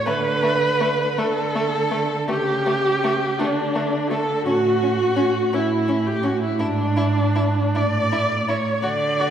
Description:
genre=classical, slow romantic movement for string quartet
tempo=55 BPM (dotted quarters)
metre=6/8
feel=uneven beats, rubato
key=D major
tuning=A4 = 440 Hz
part: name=clear violin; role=melody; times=0.0-9.3 s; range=D4 to D5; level=-30 LUFS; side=left 6 dB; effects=none
part: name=rich viola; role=accompaniment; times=0.0-9.3 s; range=D4 to D5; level=-21 LUFS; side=right 1 dB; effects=none
part: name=rich cello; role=bass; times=0.0-9.3 s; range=G#2 to D3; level=-25 LUFS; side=right 3 dB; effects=none
part: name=clear violin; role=second line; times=0.1-9.3 s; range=A3 to F#4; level=-28 LUFS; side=left 2 dB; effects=none
room=wet scoring stage reverb, RT60 1.9 s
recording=none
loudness=-18 LUFS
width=side -9 dB against mid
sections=0.1-9.3 A section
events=none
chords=0.1 D5; 2.3 A7/C# (rootless); 3.4 D5; 4.5 A; 6.6 E7/G#; 7.8 A5

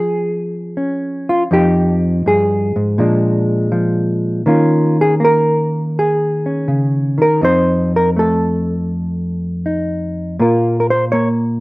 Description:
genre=solo jazz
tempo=81 BPM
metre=4/4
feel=swing 68% on 8ths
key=unclear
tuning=A4 = 439 Hz
part: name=hollow-body jazz guitar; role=solo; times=0.0-11.6 s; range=F2 to Db5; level=-13 LUFS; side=equal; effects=none
room=light reverb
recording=recorded outdoors, with no room sound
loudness=-13 LUFS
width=side -21 dB against mid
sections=0.0-11.6 A section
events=none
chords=0.0 Dbmaj7; 1.5 Fm9; 3.0 Bb7; 4.5 Eb9sus4; 7.4 F7; 10.4 Bb5

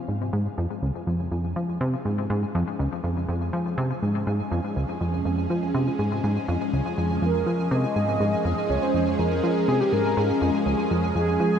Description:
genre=ambient, sequencer-driven space music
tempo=122 BPM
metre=4/4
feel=straight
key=Db major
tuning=A4 = 441 Hz
part: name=phased analog pad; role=sustained chords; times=0.0-11.6 s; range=F3 to F5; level=-28 LUFS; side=right 1 dB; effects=phaser, chorus
part: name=pulsing gated texture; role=texture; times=0.0-11.6 s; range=Ab5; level=-36 LUFS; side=right 2 dB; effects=chorus, built-in reverb
part: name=plucky analog bass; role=riff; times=0.1-11.6 s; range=Db2 to F3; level=-25 LUFS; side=equal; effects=ping-pong delay
part: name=mellow horn-like synth lead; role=melody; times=7.2-11.6 s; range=G4 to Eb5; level=-26 LUFS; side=equal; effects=analog chorus, ping-pong delay
room=moderate huge ambient reverb, RT60 7.3 s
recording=dreamy mix soaked in reverb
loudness=-22 LUFS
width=side -8 dB against mid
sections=0.0-11.6 A section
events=fade-in on analog synth pad 0.0-11.6; fade-in on synth texture 0.0-11.6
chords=0.0 Db

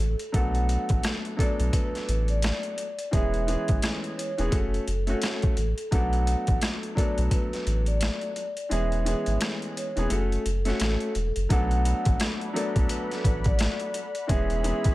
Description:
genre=hip hop, boom-bap hip-hop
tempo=86 BPM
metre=4/4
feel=swing 60% on 16ths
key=B dorian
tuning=A4 = 436 Hz
part: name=vibraphone with soft mallets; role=melody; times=0.0-14.9 s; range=A4 to F#5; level=-33 LUFS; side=right 1 dB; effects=high-pass filter, low-pass filter
part: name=warm sub bass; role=bass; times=0.0-14.9 s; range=E1 to B1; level=-26 LUFS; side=equal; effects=none
part: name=boom bap sampler-style drum kit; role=drums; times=0.2-14.9 s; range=hi-hat, kick drum, rim click, snare drum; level=-27 LUFS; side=equal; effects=overdrive
part: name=warm upright piano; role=accompaniment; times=0.3-14.9 s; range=E3 to A4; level=-31 LUFS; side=left 1 dB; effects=cassette tape, high-pass filter, low-pass filter
part: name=warm analog pad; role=sustained chords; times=11.5-14.9 s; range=G#4 to B5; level=-38 LUFS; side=left 1 dB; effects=chorus, high-pass filter, low-pass filter
room=digital ambience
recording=none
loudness=-24 LUFS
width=side -18 dB against mid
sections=0.0-11.5 A section; 11.5-14.9 B section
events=kick muted 8.7-11.5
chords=0.3 Bm7; 3.1 E6; 4.5 F#m; 5.9 Bm7; 8.7 E6; 10.1 F#m; 11.5 Bm7; 14.3 E6

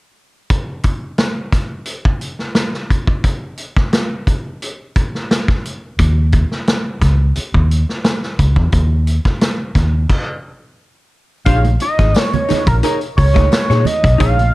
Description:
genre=funk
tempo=88 BPM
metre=4/4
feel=straight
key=Bb minor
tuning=A4 = 440 Hz
part: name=vintage drum kit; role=drums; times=0.5-14.5 s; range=crash cymbal, hi-hat, kick drum, snare drum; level=-16 LUFS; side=equal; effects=none
part: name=vintage muted fingered electric bass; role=bass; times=6.0-14.5 s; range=Ab1 to Bb2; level=-13 LUFS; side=equal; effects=none
part: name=fat analog lead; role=melody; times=11.5-14.5 s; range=Bb4 to F5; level=-18 LUFS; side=right 1 dB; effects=chorus, plate reverb
part: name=vintage hollow-body jazz guitar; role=accompaniment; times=11.5-14.4 s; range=Eb4 to Eb5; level=-22 LUFS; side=left 3 dB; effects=none
part: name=tambourine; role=percussion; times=11.5-14.4 s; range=none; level=-38 LUFS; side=left 5 dB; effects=none
part: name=congas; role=percussion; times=11.6-14.5 s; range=none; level=-23 LUFS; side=right 6 dB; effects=none
room=light reverb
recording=dark, warm production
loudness=-13 LUFS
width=side -19 dB against mid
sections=0.5-11.5 A section; 11.5-14.5 B section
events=stop 10.1-11.5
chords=0.5 N.C.; 11.5 Bbm7

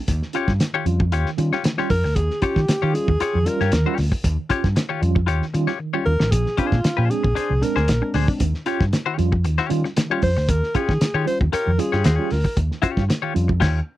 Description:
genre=funk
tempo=115 BPM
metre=4/4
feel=straight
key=unclear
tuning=A4 = 439 Hz
part: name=mellow tine electric piano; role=stabs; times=0.1-13.5 s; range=Bb2 to F4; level=-27 LUFS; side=right 4 dB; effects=medium stereo tremolo
part: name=fingered electric bass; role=bass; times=0.1-13.8 s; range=A1 to Eb3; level=-20 LUFS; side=equal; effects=none
part: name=cloth-damped thuddy drum kit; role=drums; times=0.1-13.8 s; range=crash cymbal, hi-hat, kick drum, snare drum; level=-22 LUFS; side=equal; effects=none
part: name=semi-hollow electric guitar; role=accompaniment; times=0.3-13.8 s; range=D4 to Db5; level=-24 LUFS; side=left 8 dB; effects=tremolo
part: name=breathy alto saxophone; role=melody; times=1.9-12.6 s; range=F4 to C5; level=-24 LUFS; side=equal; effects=none
room=little or no reverb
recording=dry, close 1970s-style studio recording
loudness=-18 LUFS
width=side -15 dB against mid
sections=0.0-14.0 A section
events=drum fill 5.8-6.3; band accent 13.6-14.0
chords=0.1 Eb9; 6.3 Bb9; 8.4 Eb9

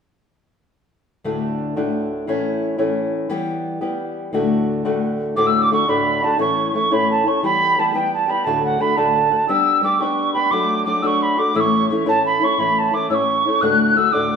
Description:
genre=celtic folk, Celtic slide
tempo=116 BPM (dotted quarters)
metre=12/8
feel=straight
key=D major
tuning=A4 = 441 Hz
part: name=fingerpicked old ladder-braced acoustic guitar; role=accompaniment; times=1.2-14.4 s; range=D2 to G4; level=-20 LUFS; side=left 2 dB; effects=none
part: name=mellow hollow wooden whistle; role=melody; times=5.4-14.4 s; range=F#5 to F#6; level=-17 LUFS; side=right 2 dB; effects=none
room=wet stone room reverb, RT60 1.4 s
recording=band playing live in one room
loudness=-16 LUFS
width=side -6 dB against mid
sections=1.2-5.4 A section; 5.4-14.4 B section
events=none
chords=1.2 D; 2.3 A; 3.3 Em; 4.3 D; 6.4 A; 7.4 Em; 8.5 D; 9.5 G; 10.5 D/F#; 11.6 A; 13.6 D

